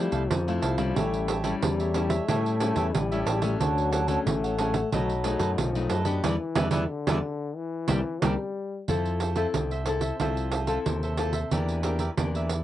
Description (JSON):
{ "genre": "samba and choro", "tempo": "91 BPM", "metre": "4/4", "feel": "straight", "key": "F major from 8.9 s", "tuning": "A4 = 440 Hz", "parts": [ { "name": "warm trombone", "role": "second line", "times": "0.0-8.9 s", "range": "D3 to A3", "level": "-31 LUFS", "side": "left 4 dB", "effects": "none" }, { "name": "cavaquinho", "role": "accompaniment", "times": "0.0-12.6 s", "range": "D4 to F#5", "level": "-32 LUFS", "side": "right 5 dB", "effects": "none" }, { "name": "nylon-string guitar", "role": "accompaniment", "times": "0.0-12.6 s", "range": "F#2 to A4", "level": "-31 LUFS", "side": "left 5 dB", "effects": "none" }, { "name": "picked electric bass", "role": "bass", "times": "0.0-12.6 s", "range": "A1 to A2", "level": "-29 LUFS", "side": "equal", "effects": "none" }, { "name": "pandeiro", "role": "percussion", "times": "0.1-12.6 s", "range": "none", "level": "-29 LUFS", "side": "right 5 dB", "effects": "none" } ], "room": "moderate booth ambience, RT60 0.2 s", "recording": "home recording on cassette, nothing above 11.0 kHz", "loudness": "-24 LUFS", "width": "side -13 dB against mid", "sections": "0.0-8.9 A section; 8.9-12.6 B section", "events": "band accent 6.2-8.9", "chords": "0.0 Fmaj7; 1.0 A7; 3.6 Dmaj7; 4.9 B7; 6.2 Em7; 7.6 C7; 8.9 Fmaj7; 11.5 Em7b5" }